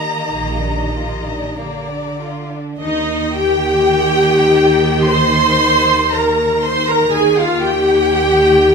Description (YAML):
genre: classical, slow romantic movement for string orchestra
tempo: 47-61 BPM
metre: 4/4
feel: rubato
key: Eb major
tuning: A4 = 438 Hz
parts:
  - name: rich symphonic violin section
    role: melody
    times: 0.0-8.7 s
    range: Eb5 to C6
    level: -22 LUFS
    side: left 1 dB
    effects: none
  - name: rich chamber violin section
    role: second line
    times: 0.0-8.7 s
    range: Bb3 to C6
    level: -20 LUFS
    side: right 1 dB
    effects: none
  - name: rich chamber viola section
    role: accompaniment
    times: 0.0-8.7 s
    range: Eb4 to C5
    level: -14 LUFS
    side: left 1 dB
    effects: none
  - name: rich studio cello section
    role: bass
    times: 0.0-8.7 s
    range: D3 to Eb3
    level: -22 LUFS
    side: equal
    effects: none
  - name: rich symphonic double bass section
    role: bass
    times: 0.3-8.7 s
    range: Bb1 to Eb2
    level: -24 LUFS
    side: right 3 dB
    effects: none
room: moderate large studio reverb, RT60 1.2 s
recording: minimal, uncompressed stereo recording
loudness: -12 LUFS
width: side -5 dB against mid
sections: 0.0-2.8 A section; 2.8-8.7 B section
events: none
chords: 0.3 Bb; 2.8 Eb